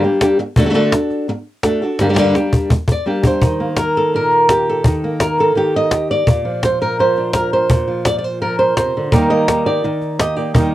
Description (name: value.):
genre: flamenco.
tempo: 168 BPM.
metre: 4/4.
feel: straight.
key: unclear.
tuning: A4 = 441 Hz.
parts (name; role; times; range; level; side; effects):
flamenco guitar; melody; 0.0-10.7 s; G2 to Eb5; -15 LUFS; equal; cassette tape.
cajon; percussion; 0.2-10.7 s; none; -16 LUFS; equal; none.
flamenco guitar; stabs; 9.1-10.7 s; Eb3 to G4; -19 LUFS; right 3 dB; cassette tape.
room: moderate booth ambience, RT60 0.2 s.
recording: home recording on cassette.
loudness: -13 LUFS.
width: side -14 dB against mid.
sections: 0.0-3.4 A section; 3.4-10.7 B section.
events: drum fill 2.0-3.4.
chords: 0.0 Gm; 0.6 D; 2.0 Gm; 3.4 Eb; 6.3 Bb; 9.1 Eb.